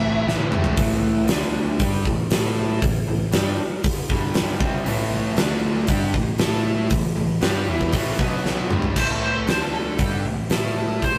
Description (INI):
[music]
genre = hard rock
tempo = 117 BPM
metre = 4/4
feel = straight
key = A minor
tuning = A4 = 441 Hz
[part]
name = lead guitar through a small cranked amp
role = melody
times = 0.0-0.2, 9.0-11.2 s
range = A4 to E5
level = -28 LUFS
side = equal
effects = overdrive
[part]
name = cranked stack guitar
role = riff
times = 0.0-11.2 s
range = G2 to A4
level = -30 LUFS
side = equal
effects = overdrive
[part]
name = crunchy overdriven guitar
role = riff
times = 0.0-9.0 s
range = G2 to A4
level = -28 LUFS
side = equal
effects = none
[part]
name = high-gain distorted guitar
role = riff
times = 0.0-0.8, 4.8-11.2 s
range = G2 to A4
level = -35 LUFS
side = equal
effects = distortion
[part]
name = hollow-body short-scale picked electric bass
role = bass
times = 0.0-11.2 s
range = G1 to A2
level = -31 LUFS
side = equal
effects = none
[part]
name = huge arena drum kit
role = drums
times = 0.3-11.1 s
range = crash cymbal, hi-hat, kick drum, snare drum, toms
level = -25 LUFS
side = equal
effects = none
[sound]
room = moderate stone room reverb, RT60 1.1 s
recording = rough rehearsal-room recording, tube saturation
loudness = -22 LUFS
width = mono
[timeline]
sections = 0.8-9.0 A section; 9.0-11.2 B section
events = drum fill 0.3-0.8, 8.5-9.0; lead electric guitar solo 9.0-11.2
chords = 0.0 Am; 0.8 A5; 1.3 D5; 1.8 A5; 4.1 G5; 4.6 Am; 5.4 D5; 5.9 A5; 8.2 B5; 8.7 G5; 9.0 A5; 9.5 D5; 10.0 A5